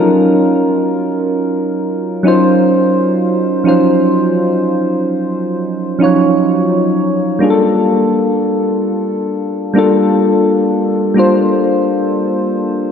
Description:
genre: R&B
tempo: 64 BPM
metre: 4/4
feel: straight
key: unclear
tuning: A4 = 441 Hz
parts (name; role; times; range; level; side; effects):
- soft electric-piano-like synth keys; solo; 0.0-12.9 s; F3 to Db5; -11 LUFS; equal; chorus
room: wet lush hall reverb, RT60 2.9 s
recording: dreamy mix soaked in reverb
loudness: -11 LUFS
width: side -7 dB against mid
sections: 0.0-12.9 A section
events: none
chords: 0.0 Ebm9; 7.4 Gm9

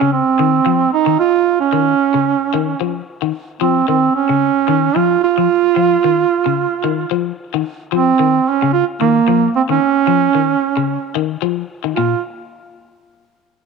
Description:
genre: afrobeat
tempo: 112 BPM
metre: 4/4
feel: swing 56% on 16ths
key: unclear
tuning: A4 = 440 Hz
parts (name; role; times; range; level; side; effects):
- mellow duduk; melody; 0.0-12.2 s; Bb3 to F4; -14 LUFS; right 8 dB; none
- electric guitar at the edge of break-up; arpeggios; 0.0-12.1 s; Bb2 to F3; -19 LUFS; left 14 dB; phaser
room: wet spring reverb, RT60 2.2 s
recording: 1960s-style stereo with parts hard left and right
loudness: -13 LUFS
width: side -4 dB against mid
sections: 0.0-12.0 A section; 12.0-13.7 B section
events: none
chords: 0.0 Dbadd9; 12.0 N.C.

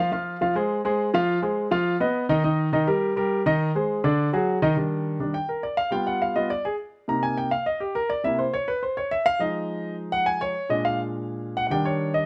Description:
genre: jazz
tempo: 207 BPM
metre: 4/4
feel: straight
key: Eb major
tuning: A4 = 440 Hz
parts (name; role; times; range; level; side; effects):
- warm concert grand piano; solo; 0.0-12.3 s; Bb2 to Bb5; -25 LUFS; equal; none
room: little or no reverb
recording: close, detailed microphones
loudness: -25 LUFS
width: mono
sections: 0.0-4.8 A section; 4.8-12.3 B section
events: grand piano solo 4.8-12.3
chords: 0.1 Fm; 1.9 B; 2.4 Eb; 3.6 Ab; 4.2 Ebmmaj7/D; 4.8 Ebmaj7; 5.9 G7; 7.1 Cm7; 8.2 C7; 9.4 Fm7; 10.6 Bb7; 11.7 Ebmaj7

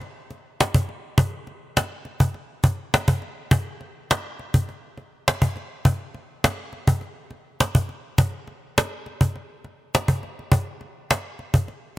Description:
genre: blues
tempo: 103 BPM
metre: 4/4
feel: straight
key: none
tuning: none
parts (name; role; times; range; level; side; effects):
- cajon; drums; 0.0-11.8 s; none; -19 LUFS; equal; none
room: little or no reverb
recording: none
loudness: -22 LUFS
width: side -17 dB against mid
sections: 0.0-12.0 A section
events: none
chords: none

